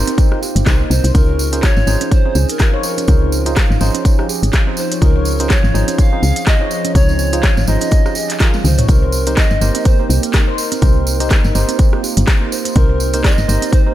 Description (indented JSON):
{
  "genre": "afro house",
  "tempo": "124 BPM",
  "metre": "4/4",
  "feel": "swing 57% on 16ths",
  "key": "unclear",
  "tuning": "A4 = 440 Hz",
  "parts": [
    { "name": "ethereal airy pad", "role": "sustained chords", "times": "0.0-13.9 s", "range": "F3 to Eb4", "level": "-26 LUFS", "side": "left 2 dB", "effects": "ensemble chorus, built-in reverb, sidechain pumping" },
    { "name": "handpan", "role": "arpeggios", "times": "0.0-13.9 s", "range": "Bb3 to Db5", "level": "-23 LUFS", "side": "right 4 dB", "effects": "sidechain pumping, dub echo" },
    { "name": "tine electric piano", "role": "stabs", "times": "0.0-13.9 s", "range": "Eb4 to Db5", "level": "-25 LUFS", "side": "right 2 dB", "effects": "fast stereo tremolo, sidechain pumping, dub echo" },
    { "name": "woody FM bass", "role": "bass", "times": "0.0-13.6 s", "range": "G1 to Db2", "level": "-16 LUFS", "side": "equal", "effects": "tube saturation, sidechain pumping" },
    { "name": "afro-pop drum kit", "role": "drums", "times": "0.1-13.8 s", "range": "handclaps, hi-hat, rim click, toms", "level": "-22 LUFS", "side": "equal", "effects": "none" },
    { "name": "tambourine", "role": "percussion", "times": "0.1-13.8 s", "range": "none", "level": "-27 LUFS", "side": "right 4 dB", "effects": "none" },
    { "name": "electronic kick drum", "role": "drums", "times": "0.2-13.8 s", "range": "none", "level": "-12 LUFS", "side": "equal", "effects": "none" },
    { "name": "polished pan flute", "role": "melody", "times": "0.9-13.9 s", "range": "Bb4 to F5", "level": "-24 LUFS", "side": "equal", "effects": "dub echo" }
  ],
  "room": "digital ambience",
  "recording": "none",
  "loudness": "-12 LUFS",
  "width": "side -13 dB against mid",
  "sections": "0.0-13.9 A section",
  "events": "drum fill 8.5-8.9",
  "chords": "0.0 Cm7; 1.1 Dbmaj9; 8.9 Cm7"
}